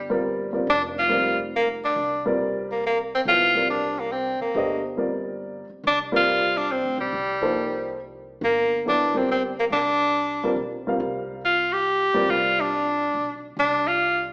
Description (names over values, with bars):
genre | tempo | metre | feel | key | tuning
modal jazz | 140 BPM | 3/4 | swing 68% on 8ths | unclear | A4 = 440 Hz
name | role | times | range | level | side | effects
bright tenor saxophone | melody | 0.0-14.3 s | G3 to G4 | -21 LUFS | equal | none
upright bass | bass | 0.0-14.3 s | F1 to D2 | -40 LUFS | equal | none
dark baby grand piano | accompaniment | 0.1-12.7 s | F3 to F5 | -26 LUFS | equal | none
room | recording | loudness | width
wet large studio reverb, RT60 1.4 s | heard from further back in the room, AM radio sound | -20 LUFS | side -30 dB against mid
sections
0.0-14.3 A section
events
none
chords
0.0 C9sus4